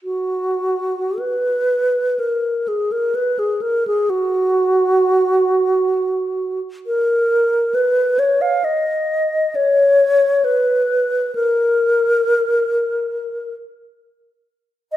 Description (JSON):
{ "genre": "classical, free, expressive piece for unaccompanied alto flute", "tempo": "49-71 BPM", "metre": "4/4", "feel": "rubato", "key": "F# major", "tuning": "A4 = 441 Hz", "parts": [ { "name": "alto flute", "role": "solo", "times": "0.0-15.0 s", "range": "F#4 to E#5", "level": "-15 LUFS", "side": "equal", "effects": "none" } ], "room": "wet recital hall reverb, RT60 1.6 s", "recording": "none", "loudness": "-15 LUFS", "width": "side -13 dB against mid", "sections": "0.0-15.0 A section", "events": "none", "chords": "none", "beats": "| 0.04 1.19 2.21 3.17 | 4.11 5.03 5.95 6.87 | 7.74 8.65 9.56 10.45 | 11.34 12.23 13.13 14.02 | 14.92" }